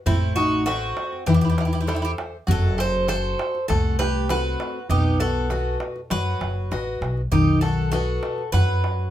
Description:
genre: greek folk, Greek bouzouki band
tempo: 99 BPM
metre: 4/4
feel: straight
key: unclear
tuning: A4 = 440 Hz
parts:
  - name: Greek bouzouki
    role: melody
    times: 0.1-9.1 s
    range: E4 to C5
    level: -27 LUFS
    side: right 1 dB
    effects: none
  - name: Greek bouzouki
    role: second line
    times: 0.1-9.1 s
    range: C4 to A4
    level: -29 LUFS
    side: right 1 dB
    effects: none
  - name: picked steel-string acoustic guitar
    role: accompaniment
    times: 0.1-9.1 s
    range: D#3 to E5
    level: -26 LUFS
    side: left 4 dB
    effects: none
  - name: upright bass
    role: bass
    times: 0.1-9.1 s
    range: F#1 to F#2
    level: -25 LUFS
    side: equal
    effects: none
  - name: darbuka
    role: percussion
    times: 0.1-9.1 s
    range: none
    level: -26 LUFS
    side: right 2 dB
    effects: none
room: light reverb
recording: close, detailed microphones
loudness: -20 LUFS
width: side -12 dB against mid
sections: 0.0-9.1 A section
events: none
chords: 0.1 Am; 2.5 F#dim; 4.9 B

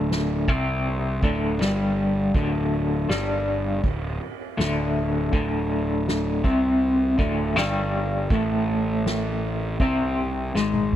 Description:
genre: psychedelic rock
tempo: 80 BPM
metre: 4/4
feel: straight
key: unclear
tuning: A4 = 439 Hz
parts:
  - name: electric guitar through a small old amp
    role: riff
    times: 0.0-11.0 s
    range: D2 to C4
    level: -23 LUFS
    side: left 1 dB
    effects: tremolo
  - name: fuzz picked electric bass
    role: bass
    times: 0.0-11.0 s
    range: D1 to C2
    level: -28 LUFS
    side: right 1 dB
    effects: overdrive
  - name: soft-mallet drum kit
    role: drums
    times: 0.1-11.0 s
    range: kick drum, ride cymbal, snare drum, toms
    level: -29 LUFS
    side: right 1 dB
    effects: none
room: little or no reverb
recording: dry, close 1970s-style studio recording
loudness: -21 LUFS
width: side -11 dB against mid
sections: 0.0-11.0 A section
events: drum fill 10.6-11.0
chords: 0.0 D5

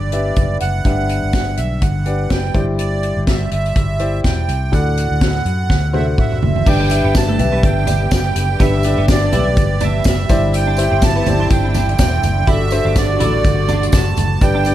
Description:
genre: piano-driven pop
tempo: 124 BPM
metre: 4/4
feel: swing 56% on 16ths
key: G major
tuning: A4 = 441 Hz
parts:
  - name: accordion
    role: melody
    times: 0.0-14.7 s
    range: D5 to A5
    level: -22 LUFS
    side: right 6 dB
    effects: light tremolo tuning, plate reverb
  - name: clear upright piano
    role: accompaniment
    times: 0.0-14.7 s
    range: G2 to E5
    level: -21 LUFS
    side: left 3 dB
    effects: plate reverb
  - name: vintage muted fingered electric bass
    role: bass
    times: 0.0-14.7 s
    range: E1 to F#2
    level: -18 LUFS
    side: equal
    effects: none
  - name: unplugged drum kit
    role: drums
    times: 0.1-14.7 s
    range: crash cymbal, hi-hat, kick drum, snare drum, toms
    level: -17 LUFS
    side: equal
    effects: none
  - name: warm studio string section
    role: sustained chords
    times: 6.7-14.7 s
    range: D3 to G4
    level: -27 LUFS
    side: left 2 dB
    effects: plate reverb
  - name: tambourine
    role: percussion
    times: 6.7-14.7 s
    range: none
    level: -34 LUFS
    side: right 6 dB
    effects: none
  - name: twelve-string electric guitar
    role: riff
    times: 6.8-14.7 s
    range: A3 to E4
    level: -26 LUFS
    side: right 5 dB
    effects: ensemble chorus
room: light reverb, small room reverb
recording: dark, warm production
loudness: -13 LUFS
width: side -12 dB against mid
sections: 0.0-6.7 A section; 6.7-14.7 B section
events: drum fill 5.7-6.7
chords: 0.0 G; 2.5 Cadd9/G; 4.7 D; 6.7 G; 10.3 Cadd9/G; 12.5 D/G

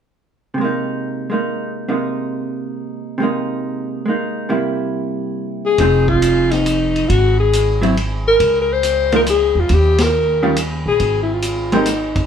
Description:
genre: jazz, small-group swing and bop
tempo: 138 BPM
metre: 3/4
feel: swing 67% on 8ths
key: unclear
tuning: A4 = 440 Hz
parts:
  - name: vintage hollow-body jazz guitar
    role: accompaniment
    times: 0.5-11.9 s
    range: C3 to Bb4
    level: -19 LUFS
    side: right 2 dB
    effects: none
  - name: mellow alto saxophone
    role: melody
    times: 5.7-12.3 s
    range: Eb4 to C5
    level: -16 LUFS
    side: left 2 dB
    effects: none
  - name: upright bass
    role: bass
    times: 5.8-12.3 s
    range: F1 to E2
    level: -19 LUFS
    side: right 1 dB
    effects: none
  - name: vintage drum kit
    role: drums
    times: 5.8-12.2 s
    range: hi-hat, kick drum, ride cymbal, snare drum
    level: -24 LUFS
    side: equal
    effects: none
room: moderate large studio reverb, RT60 1.0 s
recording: band playing live in one room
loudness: -15 LUFS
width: side -8 dB against mid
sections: 0.6-5.8 A section; 5.8-12.3 B section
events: band accent 9.9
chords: 0.6 Abadd9/C; 4.5 C7; 5.8 Fm7; 7.1 Ab7(no3); 8.4 Db5; 9.7 Eb; 11.0 Ab5

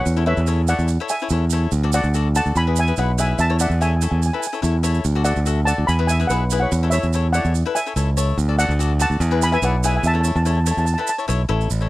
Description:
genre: calypso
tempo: 144 BPM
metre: 4/4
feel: straight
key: A major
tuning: A4 = 440 Hz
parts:
  - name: steel pan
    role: melody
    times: 0.0-11.2 s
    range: B4 to B5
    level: -23 LUFS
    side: right 1 dB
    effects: none
  - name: cavaquinho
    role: accompaniment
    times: 0.0-11.9 s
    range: E4 to E5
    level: -26 LUFS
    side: left 7 dB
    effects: none
  - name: modern bright fingered electric bass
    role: bass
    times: 0.1-11.9 s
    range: A1 to E2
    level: -18 LUFS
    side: equal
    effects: none
  - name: tube shaker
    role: percussion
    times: 0.1-11.8 s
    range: none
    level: -30 LUFS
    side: right 16 dB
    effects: none
room: little or no reverb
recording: dry, close 1970s-style studio recording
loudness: -17 LUFS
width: side -17 dB against mid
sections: 0.0-11.7 A section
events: none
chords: 0.1 Amaj7/E; 1.7 D; 2.6 E; 3.4 A/E; 5.1 D; 5.9 E; 6.7 Amaj7/E; 8.4 D; 9.2 Eadd9; 10.0 A/E

